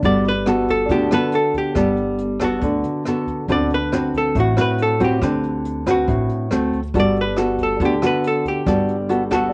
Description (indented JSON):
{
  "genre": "bossa nova",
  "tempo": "139 BPM",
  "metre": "4/4",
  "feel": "straight",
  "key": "G major",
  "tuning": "A4 = 440 Hz",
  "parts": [
    { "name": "nylon-string guitar", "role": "accompaniment", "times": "0.0-9.5 s", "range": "A2 to B4", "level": "-21 LUFS", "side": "equal", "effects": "none" },
    { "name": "upright bass", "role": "bass", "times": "0.0-9.5 s", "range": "G1 to D2", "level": "-30 LUFS", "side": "equal", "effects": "none" },
    { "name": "jazz brush drum kit", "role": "drums", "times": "0.0-9.4 s", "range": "hi-hat, kick drum, rim click", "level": "-32 LUFS", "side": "equal", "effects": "cassette tape" },
    { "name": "archtop guitar, miked and amplified", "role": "melody", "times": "0.1-9.5 s", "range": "F#4 to D5", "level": "-25 LUFS", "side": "equal", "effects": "cassette tape" }
  ],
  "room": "moderate small room reverb, RT60 0.5 s",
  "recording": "home recording on cassette, nothing above 10.8 kHz",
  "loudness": "-19 LUFS",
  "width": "mono",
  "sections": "0.0-9.5 A section",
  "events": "none",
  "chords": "0.0 Gmaj9; 3.5 D6; 6.5 D7; 6.9 Gmaj9",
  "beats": "| 0.03 0.46 0.89 1.32 | 1.76 2.19 2.62 3.05 | 3.49 3.92 4.35 4.78 | 5.21 5.65 6.08 6.51 | 6.94 7.38 7.81 8.24 | 8.67 9.10"
}